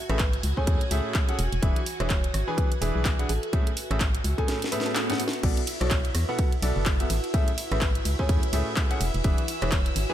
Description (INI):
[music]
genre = piano house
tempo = 126 BPM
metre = 4/4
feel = swing 58% on 16ths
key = A major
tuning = A4 = 439 Hz
[part]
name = string machine, violins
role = sustained chords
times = 0.0-10.1 s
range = E4 to G#6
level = -38 LUFS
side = right 1 dB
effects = ensemble chorus, sidechain pumping
[part]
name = warbly tape-like pad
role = texture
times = 0.0-10.1 s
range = F#4 to A5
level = -38 LUFS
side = right 1 dB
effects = chorus, built-in reverb, sidechain pumping
[part]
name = thumb-piano-like synth pluck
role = melody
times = 0.1-10.1 s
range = G#4 to E5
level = -36 LUFS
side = left 1 dB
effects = chorus, tape echo
[part]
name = clear concert grand piano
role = riff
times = 0.1-10.1 s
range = A2 to G#5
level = -32 LUFS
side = right 1 dB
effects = sidechain pumping
[part]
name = organ-like FM bass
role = bass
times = 0.1-10.1 s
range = E1 to E2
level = -27 LUFS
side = equal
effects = sidechain pumping
[part]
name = house drum kit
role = drums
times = 0.1-10.1 s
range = crash cymbal, handclaps, hi-hat, ride cymbal, rim click, snare drum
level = -31 LUFS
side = equal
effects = overdrive
[part]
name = electronic kick drum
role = drums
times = 0.2-9.8 s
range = none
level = -25 LUFS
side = equal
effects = overdrive
[part]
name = swell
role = sound effects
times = 4.6-5.4 s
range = none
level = -34 LUFS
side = left 3 dB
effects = none
[sound]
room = digital ambience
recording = none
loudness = -23 LUFS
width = side -11 dB against mid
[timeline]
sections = 0.0-10.1 A section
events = drum fill 4.5-5.4; swell 4.6-5.4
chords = 0.0 Amaj7; 1.4 E7; 3.3 Amaj7; 5.4 Bm7; 7.1 Amaj7; 9.0 E7